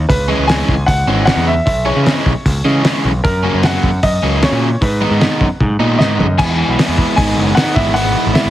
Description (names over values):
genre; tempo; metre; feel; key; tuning
indie rock; 152 BPM; 4/4; straight; C# dorian; A4 = 440 Hz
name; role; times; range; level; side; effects
growling picked electric bass; bass; 0.0-8.5 s; F#1 to C#3; -17 LUFS; equal; overdrive
bright upright piano; melody; 0.1-8.5 s; A#4 to G#5; -19 LUFS; equal; none
cloth-damped thuddy drum kit; drums; 0.1-8.4 s; crash cymbal, hi-hat, kick drum, snare drum, toms; -16 LUFS; equal; none
crunchy overdriven guitar; riff; 0.3-8.5 s; G#2 to E4; -16 LUFS; right 1 dB; none
room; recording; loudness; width
light reverb; heavily compressed radio sound, multiband compression; -11 LUFS; side -13 dB against mid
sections
0.0-6.4 A section; 6.4-8.5 B section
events
drum fill 5.6-6.4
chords
0.1 C#m7; 3.2 F#; 4.8 G#m7; 6.4 E; 7.2 G#m; 7.8 E/G#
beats
| 0.09 0.49 0.88 1.28 | 1.67 2.06 2.46 2.85 | 3.25 3.64 4.03 4.42 | 4.82 5.21 5.61 6.00 | 6.39 6.79 7.18 7.57 | 7.96 8.36